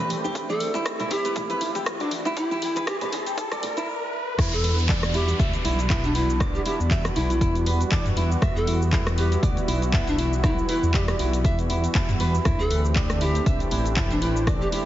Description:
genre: afro house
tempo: 119 BPM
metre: 4/4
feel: swing 56% on 16ths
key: E minor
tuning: A4 = 443 Hz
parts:
  - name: warm analog pad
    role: sustained chords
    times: 0.0-14.9 s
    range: E3 to G4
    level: -31 LUFS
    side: equal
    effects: chorus, sidechain pumping
  - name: nylon-string guitar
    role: arpeggios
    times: 0.0-14.8 s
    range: E4 to E5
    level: -30 LUFS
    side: right 2 dB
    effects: sidechain pumping, tape echo
  - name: dark detuned saw bass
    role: bass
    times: 0.0-14.7 s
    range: A1 to E2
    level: -25 LUFS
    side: equal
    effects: sidechain pumping, high-pass filter
  - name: house drum kit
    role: drums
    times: 0.0-14.8 s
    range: crash cymbal, handclaps, hi-hat, rim click, shaker, toms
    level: -30 LUFS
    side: equal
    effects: high-pass filter on perc, studio ambience, high-pass filter on hats, high-pass filter on toms, high-pass filter on snare, high-pass filter on cymbals
  - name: riser and downlifter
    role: sound effects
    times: 0.1-8.4 s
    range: none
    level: -33 LUFS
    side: equal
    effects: none
  - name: congas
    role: percussion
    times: 0.1-3.7 s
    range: none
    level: -37 LUFS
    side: right 1 dB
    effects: none
  - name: djembe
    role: percussion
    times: 0.2-3.9 s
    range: none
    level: -37 LUFS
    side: left 3 dB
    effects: none
  - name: electronic kick drum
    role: drums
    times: 0.4-14.6 s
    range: none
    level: -25 LUFS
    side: equal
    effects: high-pass filter on kick, studio ambience
  - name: bright polished pan flute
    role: melody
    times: 0.5-14.8 s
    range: D4 to A4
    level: -29 LUFS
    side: equal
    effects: tape echo
room: light reverb, studio reverb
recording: heavily compressed radio sound, high-pass filter, nothing above 7.6 kHz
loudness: -21 LUFS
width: side -13 dB against mid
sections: 0.0-4.4 A section; 4.4-14.9 B section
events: build-up 0.0-4.4; riser 0.1-4.4; drum fill 4.1; drop 4.4-14.9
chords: 0.0 D9sus4; 4.4 Em9; 12.5 D9sus4

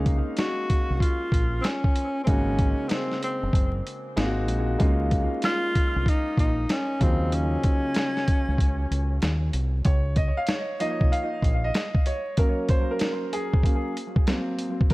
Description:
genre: hip hop, jazz-hop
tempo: 95 BPM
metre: 4/4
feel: swing 66% on 16ths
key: Db major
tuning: A4 = 439 Hz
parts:
  - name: warm grand piano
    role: accompaniment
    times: 0.0-14.9 s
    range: Db3 to F5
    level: -29 LUFS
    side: equal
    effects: analog delay
  - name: deep dub fingered electric bass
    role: bass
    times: 0.0-14.9 s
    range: Gb1 to Eb2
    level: -26 LUFS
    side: equal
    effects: none
  - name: dusty soul sampler-style drum kit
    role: drums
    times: 0.1-14.9 s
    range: hi-hat, kick drum, snare drum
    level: -23 LUFS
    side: equal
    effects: none
  - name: breathy tenor saxophone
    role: melody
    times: 0.4-9.2 s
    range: Cb4 to Gb4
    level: -28 LUFS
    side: equal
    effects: analog delay
room: small room ambience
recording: echo-heavy mix, vinyl crackle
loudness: -22 LUFS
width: side -20 dB against mid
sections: 0.0-9.9 A section; 9.9-14.9 B section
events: grand piano solo 9.9-14.9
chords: 0.0 Db69; 2.3 Ab7sus4; 4.2 Ab9; 4.8 Db69; 7.0 Ebm7; 9.9 Db69; 12.4 Ab7sus4; 14.3 Gb

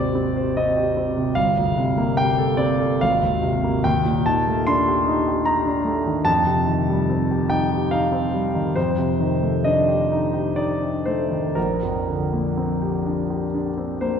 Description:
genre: classical, impressionist solo piano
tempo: 59-77 BPM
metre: 3/4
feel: rubato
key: unclear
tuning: A4 = 439 Hz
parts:
  - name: clear concert grand piano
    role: solo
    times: 0.0-14.2 s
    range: G1 to C6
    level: -19 LUFS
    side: equal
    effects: none
room: wet concert hall reverb, RT60 2.0 s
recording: heard from further back in the room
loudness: -19 LUFS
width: side -7 dB against mid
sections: 0.0-14.2 A section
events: none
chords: 0.0 Abmaj7; 1.4 Gm11; 3.0 Ab69; 3.9 Ebmaj7#11; 6.3 F9; 8.8 F13; 11.6 Bb69

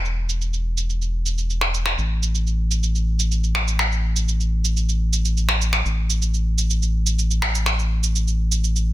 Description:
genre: progressive house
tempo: 124 BPM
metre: 4/4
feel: straight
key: unclear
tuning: A4 = 440 Hz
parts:
  - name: round analog bass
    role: bass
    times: 0.0-8.9 s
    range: E1 to A1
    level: -20 LUFS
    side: equal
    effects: none
  - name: electronic shaker and finger snaps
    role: drums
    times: 0.1-8.9 s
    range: none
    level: -24 LUFS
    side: right 2 dB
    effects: soft clipping on snare, low-pass filter on snare, low-pass filter on perc, low-pass filter on room
room: little or no reverb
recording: dense, heavily limited modern master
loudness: -19 LUFS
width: side -15 dB against mid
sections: 0.0-8.9 A section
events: none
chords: none

